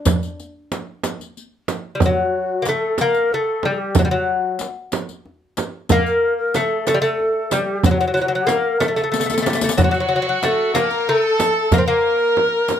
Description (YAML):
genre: Persian modal ensemble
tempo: 62 BPM (dotted quarters)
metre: 6/8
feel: straight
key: unclear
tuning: A4 = 440 Hz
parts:
  - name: lute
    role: melody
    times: 0.0-12.8 s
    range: F#3 to D4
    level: -20 LUFS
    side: left 2 dB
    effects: none
  - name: frame drum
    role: percussion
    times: 0.1-12.8 s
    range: none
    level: -21 LUFS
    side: right 6 dB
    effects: none
  - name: riq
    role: percussion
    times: 0.1-12.8 s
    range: none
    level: -27 LUFS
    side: left 5 dB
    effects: none
  - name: tombak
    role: percussion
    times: 0.1-12.8 s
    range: none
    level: -23 LUFS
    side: left 1 dB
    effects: none
  - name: breathy ney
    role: second line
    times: 2.0-12.8 s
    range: F#4 to Bb4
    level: -22 LUFS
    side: left 2 dB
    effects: none
  - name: rich chamber violin section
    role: second line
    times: 9.8-12.8 s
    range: F#4 to Bb4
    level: -22 LUFS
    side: right 1 dB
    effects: slapback echo
room: light reverb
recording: none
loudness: -16 LUFS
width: side -9 dB against mid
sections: 0.0-2.0 A section; 2.0-12.8 B section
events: drum fill 9.1-9.8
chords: none